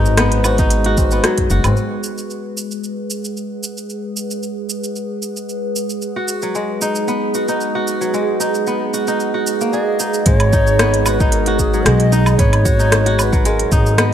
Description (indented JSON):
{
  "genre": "organic downtempo",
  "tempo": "113 BPM",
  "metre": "4/4",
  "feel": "swing 53% on 16ths",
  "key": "G# minor",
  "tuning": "A4 = 440 Hz",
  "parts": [
    { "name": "warbly tape-like pad", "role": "sustained chords", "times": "0.0-14.1 s", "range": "G#3 to F#5", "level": "-22 LUFS", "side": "right 2 dB", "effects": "chorus, built-in reverb, sidechain pumping" },
    { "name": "kora", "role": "arpeggios", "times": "0.0-14.1 s", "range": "F#3 to G#4", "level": "-20 LUFS", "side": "left 1 dB", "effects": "tape echo" },
    { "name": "upright bass", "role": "bass", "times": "0.0-1.7, 10.3-14.1 s", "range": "F#1 to B1", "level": "-16 LUFS", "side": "equal", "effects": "sidechain pumping" },
    { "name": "afro-pop drum kit", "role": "drums", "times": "0.1-14.1 s", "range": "hi-hat, rim click, shaker, woodblock", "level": "-21 LUFS", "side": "equal", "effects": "none" },
    { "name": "tabla", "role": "percussion", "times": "0.1-1.7 s", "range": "none", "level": "-28 LUFS", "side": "left 2 dB", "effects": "none" },
    { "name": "electronic kick drum", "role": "drums", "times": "0.6-1.5, 10.3-13.8 s", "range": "none", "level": "-17 LUFS", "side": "equal", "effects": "none" },
    { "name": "mellow hollow Native American-style cedar flute", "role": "melody", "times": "9.7-14.1 s", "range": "G#4 to D#5", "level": "-20 LUFS", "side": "left 1 dB", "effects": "digital delay" }
  ],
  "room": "light reverb, small room ambience",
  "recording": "none",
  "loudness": "-14 LUFS",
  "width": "side -10 dB against mid",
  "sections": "0.0-1.8 A section; 1.8-10.3 B section; 10.3-14.1 C section",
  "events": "none",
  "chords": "0.0 G#m7"
}